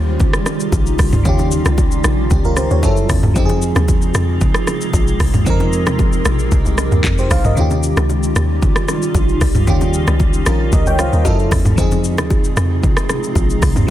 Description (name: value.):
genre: amapiano.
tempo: 114 BPM.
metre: 4/4.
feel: straight.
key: F minor.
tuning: A4 = 440 Hz.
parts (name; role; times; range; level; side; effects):
FM electric piano with soft pad layer; accompaniment; 0.0-13.9 s; Eb3 to G5; -20 LUFS; equal; chorus.
granular cloud pad; sustained chords; 0.0-13.9 s; C3 to G4; -22 LUFS; equal; built-in reverb, sidechain pumping.
hollow log drum bass; bass; 0.0-13.9 s; Bb1 to Gb2; -17 LUFS; equal; none.
afro-pop drum kit; drums; 0.2-13.9 s; handclaps, hi-hat, kick drum, rim click, shaker, toms; -17 LUFS; equal; vintage 12-bit sampler grit, soft clipping on snare.
congas and bongos; percussion; 0.2-13.9 s; none; -26 LUFS; left 1 dB; none.
room: little or no reverb.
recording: dense, heavily limited modern master.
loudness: -13 LUFS.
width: side -13 dB against mid.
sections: 0.0-13.9 A section.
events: kick muted 7.6-8.6.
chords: 0.0 Eb9; 2.8 Gbm7; 3.4 Fm7; 7.6 Eb9; 11.3 Gbm7; 11.8 Fm7.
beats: 0.20 0.73 | 1.25 1.78 2.31 2.83 | 3.36 3.88 4.41 4.94 | 5.46 5.99 6.52 7.04 | 7.57 8.10 8.62 9.15 | 9.67 10.20 10.73 11.25 | 11.78 12.31 12.83 13.36 | 13.88.